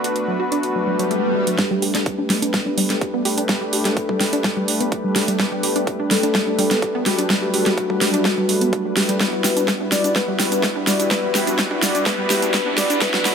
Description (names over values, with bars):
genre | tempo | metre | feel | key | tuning
progressive house | 126 BPM | 4/4 | straight | G major | A4 = 440 Hz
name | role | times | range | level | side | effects
soft octave-layered synth lead | melody | 0.0-13.3 s | F#4 to D5 | -24 LUFS | left 1 dB | chorus, sidechain pumping, digital delay
soft synth bell | second line | 0.0-1.5 s | B5 | -38 LUFS | right 4 dB | none
warm analog pad | sustained chords | 0.0-13.3 s | G3 to B4 | -30 LUFS | right 1 dB | none
wide unison pluck | arpeggios | 0.0-13.3 s | F#3 to G4 | -25 LUFS | right 1 dB | sidechain pumping, digital delay
soft supersaw | stabs | 0.0-13.3 s | F#3 to B4 | -25 LUFS | left 1 dB | sidechain pumping, low-pass filter, digital delay
big-room dance drum kit | drums | 0.0-13.3 s | cabasa, hi-hat, snare drum | -21 LUFS | equal | none
swell and riser | sound effects | 0.8-1.6, 11.1-13.3 s | none | -28 LUFS | equal | none
electronic kick drum | drums | 1.6-13.1 s | none | -27 LUFS | right 1 dB | high-pass filter on kick, high-pass filter on room
room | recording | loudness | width
moderate lush hall reverb, RT60 1.9 s, digital ambience | high-pass filter | -17 LUFS | side -6 dB against mid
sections
0.0-1.6 A section; 1.6-13.3 B section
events
filter sweep on synth pluck 0.0-1.6, 1.6-13.3; swell 0.8-1.6; build-up 1.6-13.3; drum fill 1.6-13.3; filter sweep on supersaw synth 1.6-13.3; filter sweep on soft synth lead 1.6-13.3; riser 11.1-13.3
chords
0.0 Bm7; 1.6 Gadd9; 9.2 Emadd9